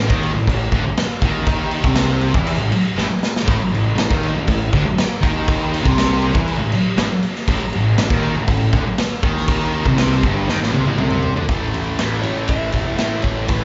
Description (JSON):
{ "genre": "garage rock duo or trio", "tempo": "120 BPM", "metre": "4/4", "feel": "straight", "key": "unclear", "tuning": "A4 = 439 Hz", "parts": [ { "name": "thick fuzz guitar", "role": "riff", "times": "0.0-13.6 s", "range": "G2 to A3", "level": "-23 LUFS", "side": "equal", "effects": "distortion, slapback echo" }, { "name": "fuzz picked electric bass", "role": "bass", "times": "0.0-13.6 s", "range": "E1 to A2", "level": "-25 LUFS", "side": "equal", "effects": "overdrive" }, { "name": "raw garage drum kit", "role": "drums", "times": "0.1-13.6 s", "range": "crash cymbal, kick drum, ride cymbal, snare drum, toms", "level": "-22 LUFS", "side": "equal", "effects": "none" }, { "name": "electric slide guitar", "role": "melody", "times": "12.2-13.6 s", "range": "B4 to E5", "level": "-29 LUFS", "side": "equal", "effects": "none" } ], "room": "small room ambience", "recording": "live gig heard through the venue's PA, club reverb, nothing above 7.6 kHz", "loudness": "-18 LUFS", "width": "mono", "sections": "0.0-11.5 A section; 11.5-13.6 B section", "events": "drum fill 3.0-3.5, 10.5-11.5", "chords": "0.0 A5; 11.5 A", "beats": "0.47 0.97 | 1.47 1.97 2.47 2.97 | 3.47 3.97 4.47 4.97 | 5.47 5.98 6.48 6.98 | 7.48 7.98 8.48 8.98 | 9.48 9.98 10.48 10.99 | 11.49 11.99 12.49 13.00 | 13.50" }